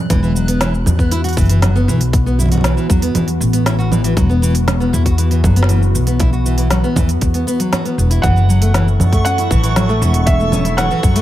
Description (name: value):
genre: folktronica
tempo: 118 BPM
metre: 4/4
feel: straight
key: unclear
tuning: A4 = 439 Hz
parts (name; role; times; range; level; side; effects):
- warbly tape-like pad; sustained chords; 0.0-11.2 s; E3 to A4; -23 LUFS; left 1 dB; chorus, built-in reverb, vintage 12-bit sampler grit
- backwards swelling texture; texture; 0.0-0.1, 8.7-11.2 s; C#6 to F#6; -28 LUFS; right 2 dB; built-in reverb
- nylon-string guitar; arpeggios; 0.1-11.2 s; E3 to F#4; -20 LUFS; left 1 dB; ping-pong delay
- upright bass; bass; 0.1-11.2 s; E1 to F#2; -15 LUFS; equal; none
- electronic kick drum; drums; 0.1-11.1 s; none; -15 LUFS; equal; overdrive
- organic electronic drum kit; drums; 0.1-11.2 s; congas, hi-hat, shaker, snare drum; -21 LUFS; right 2 dB; overdrive
- felt-muted upright piano; melody; 8.2-11.2 s; E5 to F#5; -20 LUFS; right 3 dB; ping-pong delay
room: light reverb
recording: none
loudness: -12 LUFS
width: side -13 dB against mid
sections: 0.1-11.2 A section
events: none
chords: 0.1 Esus2; 8.2 F#m7